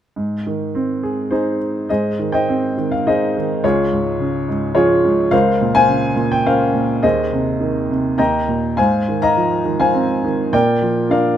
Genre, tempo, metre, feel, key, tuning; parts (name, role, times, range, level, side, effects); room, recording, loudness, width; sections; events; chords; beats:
classical, lyrical solo piano; 104 BPM; 3/4; rubato; Ab major; A4 = 441 Hz
clear upright piano; solo; 0.2-11.4 s; Db2 to Bb5; -15 LUFS; equal
light reverb; close, detailed microphones; -15 LUFS; side -10 dB against mid
0.2-1.9 A section; 1.9-11.4 B section
0.2 Ab; 3.6 Db; 5.3 Bbmadd9/Db; 7.0 Ab/Eb; 8.2 Eb; 8.8 Ab6; 10.5 Bb
| 0.16 0.75 1.32 | 1.90 2.48 3.07 | 3.64 4.20 4.76 | 5.33 5.89 6.46 | 7.04 7.61 8.19 | 8.78 9.36 9.94 | 10.53 11.11